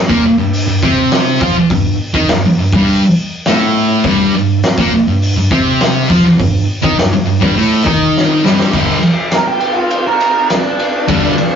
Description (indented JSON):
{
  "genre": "garage rock duo or trio",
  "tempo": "102 BPM",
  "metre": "4/4",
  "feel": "straight",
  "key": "G minor",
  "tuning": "A4 = 440 Hz",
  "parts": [
    { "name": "thick fuzz guitar", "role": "riff", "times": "0.1-11.3 s", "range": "G2 to F4", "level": "-11 LUFS", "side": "equal", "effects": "distortion" },
    { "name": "oversized low-tuned drum kit", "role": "drums", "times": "0.1-11.5 s", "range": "crash cymbal, hi-hat, kick drum, ride cymbal, snare drum", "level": "-16 LUFS", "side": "equal", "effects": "none" },
    { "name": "octave-fuzz lead guitar", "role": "melody", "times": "9.3-11.6 s", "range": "D4 to Bb4", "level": "-15 LUFS", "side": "right 3 dB", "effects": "distortion" }
  ],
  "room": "wet small room reverb, RT60 0.5 s",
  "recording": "rough rehearsal-room recording, warm saturation, nothing above 7.5 kHz",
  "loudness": "-10 LUFS",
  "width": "side -7 dB against mid",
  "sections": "0.0-8.7 A section; 8.7-11.6 B section",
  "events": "drum fill 8.1-8.7; lead electric guitar solo 8.7-11.6",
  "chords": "0.0 N.C.; 8.7 G5",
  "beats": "0.53 1.11 | 1.70 2.28 2.87 3.45 | 4.04 4.62 5.21 5.80 | 6.38 6.97 7.56 8.15 | 8.73 9.32 9.91 10.50 | 11.09"
}